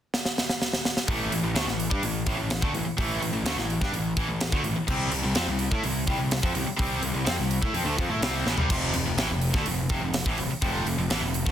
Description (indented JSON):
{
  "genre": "hard rock",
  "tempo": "126 BPM",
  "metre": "4/4",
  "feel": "straight",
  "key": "A minor",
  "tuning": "A4 = 441 Hz",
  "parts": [
    { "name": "tight metal drum kit", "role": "drums", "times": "0.1-11.5 s", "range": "crash cymbal, hi-hat, kick drum, snare drum, splash cymbal, toms", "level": "-28 LUFS", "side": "equal", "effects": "none" },
    { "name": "high-gain distorted guitar", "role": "riff", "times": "1.1-11.5 s", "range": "F2 to E4", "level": "-28 LUFS", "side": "left 1 dB", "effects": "distortion" },
    { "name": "fuzz picked electric bass", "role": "bass", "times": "1.1-11.5 s", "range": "F1 to A2", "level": "-30 LUFS", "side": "equal", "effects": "overdrive" }
  ],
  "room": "little or no reverb",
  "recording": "dense, heavily limited modern master",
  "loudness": "-24 LUFS",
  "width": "side -10 dB against mid",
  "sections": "0.0-1.1 A section; 1.1-11.5 B section",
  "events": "drum fill 0.1-1.1, 8.5",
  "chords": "0.0 N.C.; 1.1 A5; 4.9 C5; 8.7 F5"
}